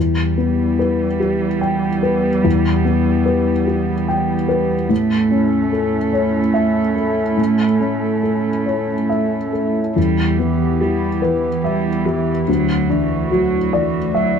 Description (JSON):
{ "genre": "neoclassical piano and strings", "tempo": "48 BPM (dotted quarters)", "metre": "6/8", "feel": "rubato", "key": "E minor", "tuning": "A4 = 439 Hz", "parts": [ { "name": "dark cello", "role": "second line", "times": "0.0-14.4 s", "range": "E3 to A3", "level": "-21 LUFS", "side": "right 5 dB", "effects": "none" }, { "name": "dark upright piano", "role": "accompaniment", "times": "0.0-14.4 s", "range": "D2 to G5", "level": "-17 LUFS", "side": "left 2 dB", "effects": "none" }, { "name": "hollow soft pad", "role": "sustained chords", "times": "0.0-14.4 s", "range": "A3 to A4", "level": "-24 LUFS", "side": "equal", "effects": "chorus" } ], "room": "light reverb", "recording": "dark, warm production", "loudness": "-15 LUFS", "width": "side -7 dB against mid", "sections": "0.0-14.4 A section", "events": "none", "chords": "0.0 Em; 4.9 A; 10.0 Em; 12.5 Dadd9" }